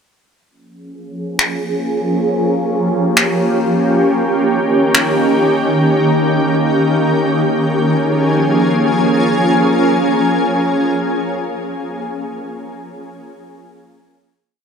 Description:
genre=hip hop, atmospheric cloud-rap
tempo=free time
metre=none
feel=none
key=Bb dorian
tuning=A4 = 441 Hz
part: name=shimmering ambient pad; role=sustained chords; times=1.1-11.9 s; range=Eb3 to Ab4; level=-14 LUFS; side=equal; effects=chorus, built-in reverb, low-pass filter
part: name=electronic finger snaps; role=drums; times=1.4-5.0 s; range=none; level=-15 LUFS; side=left 1 dB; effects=overdrive
room=moderate huge ambient reverb, RT60 5.2 s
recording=none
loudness=-13 LUFS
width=side -6 dB against mid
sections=0.5-7.6 breakdown; 7.6-11.2 final chord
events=filter sweep on ambient pad 0.5-7.6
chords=0.5 Bbm7; 4.0 Eb7; 7.6 Bbm7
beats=free time

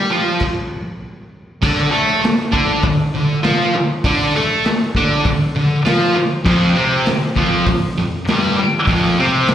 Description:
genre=garage rock duo or trio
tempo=99 BPM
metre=4/4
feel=straight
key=D minor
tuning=A4 = 440 Hz
part: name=thick fuzz guitar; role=riff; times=0.0-9.5 s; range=F2 to A4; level=-15 LUFS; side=equal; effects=distortion, slapback echo
part: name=raw garage drum kit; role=drums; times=0.4-9.5 s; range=crash cymbal, hi-hat, kick drum, snare drum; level=-20 LUFS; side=equal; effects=none
room=moderate club reverb, RT60 0.8 s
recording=live gig heard through the venue's PA, recital hall reverb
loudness=-14 LUFS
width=side -10 dB against mid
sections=0.0-1.6 A section; 1.6-9.5 B section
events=stop 0.4-1.6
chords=0.0 N.C.; 1.6 Dm; 6.5 F5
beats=0.41 1.02 | 1.62 2.23 2.83 3.44 | 4.04 4.65 5.25 5.85 | 6.46 7.06 7.67 8.27 | 8.87 9.48

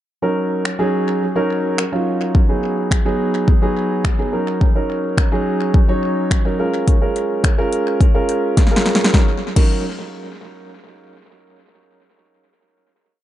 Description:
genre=dance-pop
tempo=106 BPM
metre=4/4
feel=straight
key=Eb minor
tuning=A4 = 438 Hz
part: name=dark baby grand piano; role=accompaniment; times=0.2-9.8 s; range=Gb3 to Db5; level=-19 LUFS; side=right 1 dB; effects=sidechain pumping, tape echo
part: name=deep house drum kit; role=drums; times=0.7-9.7 s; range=crash cymbal, finger snaps, hi-hat, kick drum, snare drum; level=-15 LUFS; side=equal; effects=tape echo
room=light reverb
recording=echo-heavy mix, nothing above 10.6 kHz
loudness=-15 LUFS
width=side -13 dB against mid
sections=0.1-9.1 verse; 9.1-11.4 final chord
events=drum fill 8.6-9.1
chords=0.1 Ebm7; 2.3 Abm7; 4.3 Ebm7; 6.6 Bbm7; 9.1 Ebm7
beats=| 0.08 0.65 1.22 1.78 | 2.35 2.91 3.48 4.05 | 4.61 5.18 5.74 6.31 | 6.88 7.44 8.01 8.57 | 9.14 9.71

